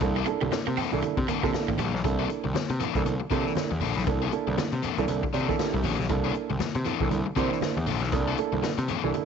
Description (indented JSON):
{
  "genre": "funk",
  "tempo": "118 BPM",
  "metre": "4/4",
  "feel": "swing 60% on 16ths",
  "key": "C mixolydian",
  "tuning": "A4 = 436 Hz",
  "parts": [
    { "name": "crunchy overdriven guitar", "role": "accompaniment", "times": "0.0-9.2 s", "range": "E3 to A4", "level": "-32 LUFS", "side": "left 13 dB", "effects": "none" },
    { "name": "dark upright piano", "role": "stabs", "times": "0.0-9.2 s", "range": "Bb3 to D5", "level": "-30 LUFS", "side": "right 11 dB", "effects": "none" },
    { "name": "fuzz picked electric bass", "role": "bass", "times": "0.0-9.1 s", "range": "A1 to C3", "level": "-29 LUFS", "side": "left 1 dB", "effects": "overdrive" },
    { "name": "swinging big-band drum kit", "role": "drums", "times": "0.0-9.2 s", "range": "hi-hat, kick drum, snare drum", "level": "-32 LUFS", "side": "left 4 dB", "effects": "none" },
    { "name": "congas", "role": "percussion", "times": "0.0-9.2 s", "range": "none", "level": "-36 LUFS", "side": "right 7 dB", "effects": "none" },
    { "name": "electric guitar at the edge of break-up", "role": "riff", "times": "0.2-1.9 s", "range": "G3 to C4", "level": "-34 LUFS", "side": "right 12 dB", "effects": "none" }
  ],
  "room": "light reverb, small room ambience",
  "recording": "1960s-style stereo with parts hard left and right, nothing above 7.8 kHz",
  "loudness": "-24 LUFS",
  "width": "side -7 dB against mid",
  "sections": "0.0-2.0 A section; 2.0-9.2 B section",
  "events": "upright piano fill 5.1-6.1",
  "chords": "0.0 C13"
}